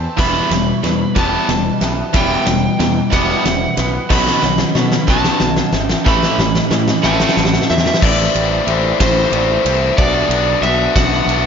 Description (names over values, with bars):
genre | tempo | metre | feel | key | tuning
post-rock | 61 BPM (dotted quarters) | 6/8 | straight | E harmonic minor | A4 = 440 Hz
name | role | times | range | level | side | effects
overdriven slide guitar | melody | 0.0-11.5 s | C5 to B5 | -20 LUFS | right 3 dB | analog delay
twangy electric guitar | arpeggios | 0.0-8.0 s | E2 to C4 | -28 LUFS | left 2 dB | none
vibraphone with medium hard mallets | arpeggios | 0.0-11.5 s | B4 to E5 | -27 LUFS | right 5 dB | analog delay
growling fingered electric bass | bass | 0.0-11.5 s | E1 to B2 | -21 LUFS | equal | overdrive
raw garage guitar | riff | 0.2-11.5 s | A2 to F#4 | -19 LUFS | left 11 dB | overdrive
tight distorted guitar | riff | 0.2-7.7 s | E2 to B3 | -21 LUFS | right 12 dB | distortion
huge arena drum kit | drums | 0.2-11.4 s | crash cymbal, kick drum, ride cymbal, snare drum | -17 LUFS | equal | none
room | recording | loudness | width
moderate large studio reverb, RT60 1.3 s, studio ambience | nothing above 7.5 kHz | -12 LUFS | side -7 dB against mid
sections
0.0-8.0 A section; 8.0-11.5 B section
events
build-up 0.0-8.0; drum fill 0.0-8.0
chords
0.2 Emadd9; 4.1 B; 6.1 Am; 10.0 Bm